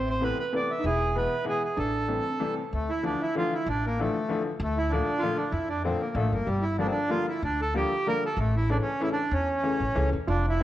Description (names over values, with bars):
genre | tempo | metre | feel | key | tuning
musette waltz | 191 BPM | 3/4 | swing 54% on 8ths, rubato | D minor | A4 = 438 Hz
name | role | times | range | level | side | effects
accordion | melody | 0.0-10.6 s | G3 to E5 | -28 LUFS | right 1 dB | none
felt-muted upright piano | second line | 0.0-2.5, 10.3-10.6 s | B3 to F4 | -32 LUFS | right 2 dB | tape echo
upright bass | bass | 0.0-10.6 s | E1 to F2 | -29 LUFS | equal | none
bright upright piano | accompaniment | 0.2-10.6 s | Bb2 to C#4 | -31 LUFS | left 4 dB | none
room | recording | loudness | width
moderate recital hall reverb, RT60 1.9 s | worn, warbling old tape, cassette tape, warbly pitch drift | -25 LUFS | side -13 dB against mid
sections
0.0-2.7 A section; 2.7-10.6 B section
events
none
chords
0.0 Amadd9; 0.8 E; 1.8 Am7; 2.7 Dmadd9; 4.6 Bbmaj7/D; 6.5 Gm7; 8.4 A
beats
0.22 0.53 | 0.84 1.15 1.46 | 1.77 2.09 2.41 | 2.73 3.05 3.36 | 3.67 3.99 4.29 | 4.60 4.91 5.22 | 5.53 5.84 6.16 | 6.47 6.79 7.11 | 7.43 7.74 8.06 | 8.37 8.68 8.99 | 9.31 9.63 9.95 | 10.28 10.60